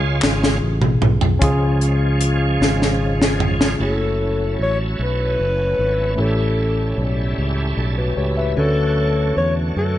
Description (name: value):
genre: slow gospel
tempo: 50 BPM (dotted quarters)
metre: 6/8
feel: straight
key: F# minor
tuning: A4 = 439 Hz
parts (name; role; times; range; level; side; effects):
- barky tine electric piano; accompaniment; 0.0-10.0 s; A2 to E5; -23 LUFS; left 2 dB; medium stereo tremolo
- bright tonewheel organ; sustained chords; 0.0-10.0 s; D3 to A5; -27 LUFS; right 3 dB; slow rotary speaker, chorus vibrato
- fingered electric bass; bass; 0.0-10.0 s; F#1 to F#2; -20 LUFS; equal; none
- crisp fusion drum kit; drums; 0.2-3.8 s; hi-hat, kick drum, snare drum, toms; -18 LUFS; equal; none
- group handclap; percussion; 0.2-0.6 s; none; -28 LUFS; left 4 dB; none
- mellow French horn section; sustained chords; 1.4-10.0 s; D3 to C#5; -33 LUFS; left 1 dB; none
- breathy alto saxophone; melody; 3.8-10.0 s; A4 to C#5; -22 LUFS; left 2 dB; none
room: light reverb, small room ambience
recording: nothing above 10.9 kHz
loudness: -16 LUFS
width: side -13 dB against mid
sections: 0.0-1.4 A section; 1.4-3.8 B section; 3.8-10.0 C section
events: tonewheel organ solo 0.0-1.4, 1.4-3.8; drum fill 0.2-1.4, 2.6-3.8; tonewheel organ fill 7.4-8.6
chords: 0.0 C#; 3.8 F#m7; 6.2 A7; 8.6 Dmaj7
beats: 0.23 | 1.42 2.61 | 3.80 4.99 | 6.18 7.38 | 8.57 9.77